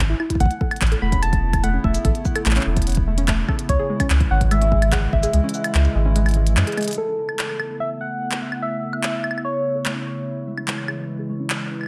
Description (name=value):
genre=IDM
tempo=146 BPM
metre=4/4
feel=straight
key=A major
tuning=A4 = 441 Hz
part: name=warm sub bass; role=bass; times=0.0-6.6 s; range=E1 to F#2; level=-21 LUFS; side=equal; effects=none
part: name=warbly dusty pluck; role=arpeggios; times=0.1-11.5 s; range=G#3 to A4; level=-31 LUFS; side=equal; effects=chorus, tape echo
part: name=glitchy drum kit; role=drums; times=0.2-11.9 s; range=claves, handclaps, hi-hat, shaker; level=-28 LUFS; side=equal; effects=studio reverb, analog delay
part: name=electronic kick drum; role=drums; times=0.3-5.2 s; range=none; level=-25 LUFS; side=equal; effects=studio reverb
part: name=soft struck synth lead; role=melody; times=0.4-10.1 s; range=A4 to B5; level=-29 LUFS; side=equal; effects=chorus, phaser, tape echo
part: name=warbly tape-like pad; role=sustained chords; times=0.7-11.9 s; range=C#3 to E4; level=-31 LUFS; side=equal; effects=chorus, built-in reverb, vintage 12-bit sampler grit, sidechain pumping
room=light reverb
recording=echo-heavy mix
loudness=-21 LUFS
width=mono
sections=0.0-7.0 A section; 7.0-11.9 B section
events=kick drops out 5.3-7.0; drum fill 6.8; filter sweep on ambient pad 7.0-11.9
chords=0.4 Aadd9; 3.7 C#m; 7.0 Aadd9; 10.3 C#m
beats=| 0.40 0.81 1.23 1.64 | 2.05 2.46 2.87 3.28 | 3.69 4.10 4.51 4.92 | 5.33 5.75 6.16 6.57 | 6.98 7.39 7.80 8.21 | 8.62 9.03 9.45 9.86 | 10.27 10.68 11.09 11.50